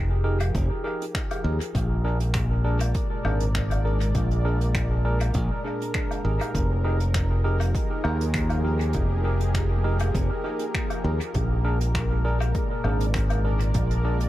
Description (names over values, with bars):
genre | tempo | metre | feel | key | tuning
ambient dub | 100 BPM | 4/4 | swing 53% on 16ths | unclear | A4 = 440 Hz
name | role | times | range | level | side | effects
warm analog pad | sustained chords | 0.0-14.3 s | Bb2 to D5 | -33 LUFS | equal | chorus
modern bright fingered electric bass | bass | 0.0-14.3 s | F1 to Eb2 | -23 LUFS | equal | none
bright tine electric piano | stabs | 0.2-14.2 s | D4 to Bb4 | -32 LUFS | right 1 dB | wide subtle chorus, dub echo
jazz brush drum kit | drums | 0.4-14.3 s | finger snaps, hi-hat, woodblock | -34 LUFS | left 1 dB | dub echo
electronic kick drum | drums | 0.5-13.9 s | none | -29 LUFS | equal | overdrive
bubbling stepped-filter texture | texture | 7.2-14.3 s | Bb3 to Bb4 | -37 LUFS | left 1 dB | chorus, built-in reverb
room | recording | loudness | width
little or no reverb | echo-heavy mix | -22 LUFS | side -15 dB against mid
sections
0.0-14.3 A section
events
none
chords
0.0 Fm11; 1.7 Bb7; 6.5 Fm11; 11.3 Bb7